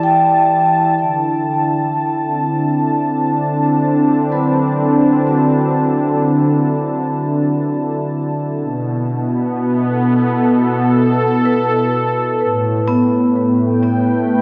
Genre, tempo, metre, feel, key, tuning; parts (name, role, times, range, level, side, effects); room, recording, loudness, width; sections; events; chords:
ambient; 63 BPM; 4/4; straight; A4 = 440 Hz
warm analog pad; sustained chords; 0.0-14.4 s; A2 to A5; -17 LUFS; equal; chorus
vibraphone with medium hard mallets; arpeggios; 0.0-14.4 s; F#3 to B5; -21 LUFS; equal; tape echo
wet plate reverb, RT60 3.7 s; dreamy mix soaked in reverb, cassette tape; -16 LUFS; mono
1.0-14.4 A section
fade-in on vibraphone 1.0-14.4
0.0 Em7; 1.0 D7; 8.6 B7sus4; 12.4 A5